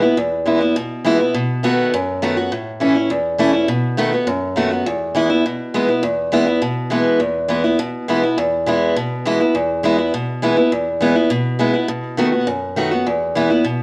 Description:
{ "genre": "rock", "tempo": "205 BPM", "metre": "4/4", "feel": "straight", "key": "E major from 4.9 s", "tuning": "A4 = 440 Hz", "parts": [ { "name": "picked steel-string acoustic guitar", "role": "solo", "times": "0.0-13.8 s", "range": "E2 to F#4", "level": "-18 LUFS", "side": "equal", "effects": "none" } ], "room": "moderate large studio reverb, RT60 1.1 s", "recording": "band playing live in one room, cassette tape", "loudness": "-18 LUFS", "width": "mono", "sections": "0.0-4.9 A section; 4.9-13.8 B section", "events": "none", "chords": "0.0 E; 1.3 B7; 2.5 A; 3.7 B7; 4.9 E; 11.9 B7; 13.1 E", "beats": "| 0.17 0.46 0.76 1.05 | 1.34 1.64 1.93 2.22 | 2.51 2.81 3.10 3.39 | 3.68 3.98 4.27 4.56 | 4.86 5.15 5.44 5.73 | 6.03 6.32 6.61 6.91 | 7.20 7.49 7.79 8.08 | 8.37 8.67 8.96 9.25 | 9.55 9.84 10.13 10.43 | 10.72 11.01 11.31 11.60 | 11.89 12.19 12.48 12.78 | 13.07 13.36 13.66" }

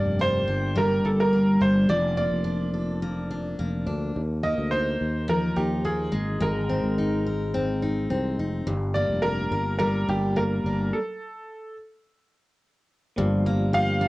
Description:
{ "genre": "acoustic pop", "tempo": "106 BPM", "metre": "4/4", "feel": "straight", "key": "unclear", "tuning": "A4 = 440 Hz", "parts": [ { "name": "bright upright piano", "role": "melody", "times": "0.0-14.1 s", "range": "G4 to F5", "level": "-27 LUFS", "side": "right 1 dB", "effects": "cassette tape" }, { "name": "picked steel-string acoustic guitar", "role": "accompaniment", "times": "0.0-14.1 s", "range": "G2 to Bb4", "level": "-25 LUFS", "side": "left 1 dB", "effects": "cassette tape" }, { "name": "sustaining fretless electric bass", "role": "bass", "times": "0.0-14.1 s", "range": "F1 to Eb2", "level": "-28 LUFS", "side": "equal", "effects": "none" }, { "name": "bright reed electric piano", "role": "accompaniment", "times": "13.2-14.1 s", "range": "Bb3 to D5", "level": "-31 LUFS", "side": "left 1 dB", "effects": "fast tremolo, cassette tape" }, { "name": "direct-recorded clean electric guitar", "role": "arpeggios", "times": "13.2-14.1 s", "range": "F3 to Bb3", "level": "-33 LUFS", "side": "right 3 dB", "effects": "cassette tape" } ], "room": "moderate studio reverb, RT60 0.5 s", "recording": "home recording on cassette", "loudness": "-22 LUFS", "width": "side -19 dB against mid", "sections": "0.0-13.2 A section", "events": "stop 10.9-13.2", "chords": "0.0 Gm; 1.9 Bbmaj7/F; 4.2 Ebsus2; 6.1 Abadd9; 8.7 Gm; 10.9 N.C.; 13.2 Gm7", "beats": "0.20 0.76 1.33 | 1.90 2.46 3.03 3.59 | 4.16 4.72 5.29 5.85 | 6.41 6.98 7.54 8.11 | 8.67 9.23 9.80 10.36 | 10.93 11.49 12.05 12.61 | 13.18 13.74" }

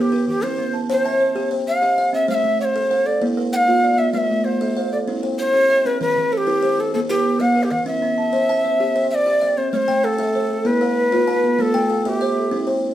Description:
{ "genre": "southern african traditional, mbira-style interlocking cycle", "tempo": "129 BPM (dotted quarters)", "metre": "12/8", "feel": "straight", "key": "A equiheptatonic", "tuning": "A4 = 437 Hz", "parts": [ { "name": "mellow Native American-style cedar flute", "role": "melody", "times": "0.0-12.7 s", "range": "G4+21c to G5-40c", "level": "-18 LUFS", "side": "equal", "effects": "none" }, { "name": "buzzing kalimba", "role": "arpeggios", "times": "0.0-12.9 s", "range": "E3 to A5", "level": "-23 LUFS", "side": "left 1 dB", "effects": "none" }, { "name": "kalimba", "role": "arpeggios", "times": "0.0-12.9 s", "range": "E3 to A5", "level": "-24 LUFS", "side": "right 3 dB", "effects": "tape echo" } ], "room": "wet studio reverb, RT60 0.6 s", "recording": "heard from further back in the room", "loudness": "-16 LUFS", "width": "side -12 dB against mid", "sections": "0.0-9.7 A section; 9.7-12.9 B section", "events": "none", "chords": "0.4 C; 2.3 Am; 3.2 Bm; 4.2 Am; 5.1 C; 6.0 Em; 7.9 C; 9.7 Am; 10.7 B5; 11.6 Am", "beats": "| 0.44 0.90 1.37 1.83 | 2.29 2.76 3.22 3.69 | 4.15 4.62 5.08 5.54 | 6.01 6.47 6.94 7.40 | 7.87 8.33 8.80 9.26 | 9.73 10.19 10.66 11.12 | 11.59 12.05 12.52" }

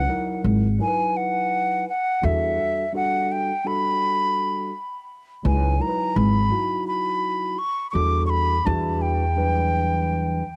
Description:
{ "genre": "hip hop, jazz-hop", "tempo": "84 BPM", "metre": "4/4", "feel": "swing 64% on 16ths", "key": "unclear", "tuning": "A4 = 440 Hz", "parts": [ { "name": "mellow silver concert flute", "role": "melody", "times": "0.0-10.6 s", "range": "E5 to D6", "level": "-26 LUFS", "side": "equal", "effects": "cassette tape, analog delay" }, { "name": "mellow tine electric piano", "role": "accompaniment", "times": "0.0-10.4 s", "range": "F#3 to B4", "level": "-31 LUFS", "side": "equal", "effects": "cassette tape" }, { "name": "upright bass", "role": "bass", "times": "0.0-10.4 s", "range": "G#1 to E2", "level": "-24 LUFS", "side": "equal", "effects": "none" } ], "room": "light reverb", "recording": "home recording on cassette", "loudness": "-23 LUFS", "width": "mono", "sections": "0.0-10.6 A section", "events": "none", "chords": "0.0 C#m11 (rootless); 2.2 Em11; 5.4 C#m11; 7.9 Em11", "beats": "0.45 1.16 1.87 | 2.59 3.30 4.02 4.73 | 5.45 6.16 6.87 7.59 | 8.30 9.02 9.73 10.45" }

